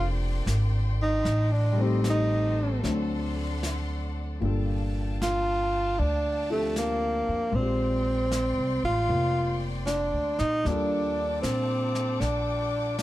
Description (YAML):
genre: jazz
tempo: 77 BPM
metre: 4/4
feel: swing 66% on 8ths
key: G minor from 4.4 s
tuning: A4 = 438 Hz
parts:
  - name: breathy tenor saxophone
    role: melody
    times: 0.0-13.0 s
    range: A3 to F4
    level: -27 LUFS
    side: right 1 dB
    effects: plate reverb
  - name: warm grand piano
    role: accompaniment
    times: 0.0-13.0 s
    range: Bb2 to D5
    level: -34 LUFS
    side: left 3 dB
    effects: none
  - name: dark studio string section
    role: sustained chords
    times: 0.0-13.0 s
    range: Bb3 to D6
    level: -39 LUFS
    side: left 4 dB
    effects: none
  - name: upright bass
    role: bass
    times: 0.0-13.0 s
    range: F1 to Bb2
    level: -28 LUFS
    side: equal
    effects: none
  - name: jazz brush drum kit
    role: drums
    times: 0.5-13.0 s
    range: brushed snare drum, hi-hat, snare drum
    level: -38 LUFS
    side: equal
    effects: none
room: light reverb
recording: dark, warm production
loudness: -24 LUFS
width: side -15 dB against mid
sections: 0.0-4.4 A section; 4.4-13.0 B section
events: tenor saxophone solo 0.0-4.4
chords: 0.0 Bb69; 1.3 Am7b5; 2.8 D7; 4.4 Gm9; 7.5 Bb13; 10.7 Ebmaj9#11